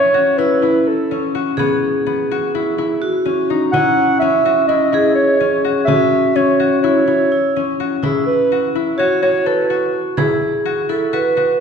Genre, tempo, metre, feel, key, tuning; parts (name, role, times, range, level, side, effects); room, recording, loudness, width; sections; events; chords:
contemporary instrumental, chamber music in an uneven meter; 251 BPM (eighths); 9/8; straight; A4 = 440 Hz
dark clarinet; melody; 0.0-10.0 s; G#4 to F#5; -16 LUFS; right 2 dB
vibraphone with medium hard mallets; second line; 0.0-11.6 s; C#4 to B4; -20 LUFS; equal
concert harp; arpeggios; 0.0-11.6 s; B3 to A4; -19 LUFS; left 3 dB
frame drum; percussion; 0.6-11.6 s; -26 LUFS; right 3 dB
wet scoring stage reverb, RT60 1.7 s; heard from further back in the room; -14 LUFS; side -6 dB against mid
0.0-8.0 A section; 8.0-11.6 B section
0.4 Aadd9; 1.6 E; 8.0 E5; 9.0 B5